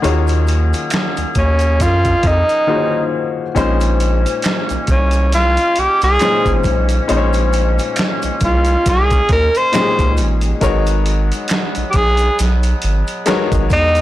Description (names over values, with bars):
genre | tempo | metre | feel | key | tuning
R&B, neo-soul | 68 BPM | 4/4 | swing 56% on 16ths | unclear | A4 = 436 Hz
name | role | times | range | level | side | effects
clear upright piano | accompaniment | 0.0-14.0 s | Bb2 to Db5 | -20 LUFS | left 5 dB | plate reverb
warm woodwind section | sustained chords | 0.0-14.0 s | Eb3 to F5 | -26 LUFS | right 1 dB | plate reverb
boom bap sampler-style drum kit | drums | 0.0-14.0 s | hi-hat, kick drum, snare drum | -21 LUFS | right 1 dB | none
maracas and finger snaps | percussion | 0.0-14.0 s | none | -30 LUFS | right 6 dB | none
round analog bass | bass | 0.1-14.0 s | Ab1 to Gb2 | -16 LUFS | equal | transformer saturation
warm tenor saxophone | melody | 1.4-14.0 s | Db4 to C5 | -15 LUFS | equal | slapback echo, plate reverb
room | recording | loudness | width
light reverb | blown-out, overdriven recording, overdrive | -13 LUFS | side -14 dB against mid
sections
0.0-3.6 A section; 3.6-14.0 A section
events
break 2.7-3.6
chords
0.0 Ebm11; 3.6 Bbm11; 10.6 Abm11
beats
| 0.03 0.91 1.79 2.68 | 3.56 4.44 5.32 6.21 | 7.09 7.97 8.85 9.73 | 10.62 11.50 12.38 13.26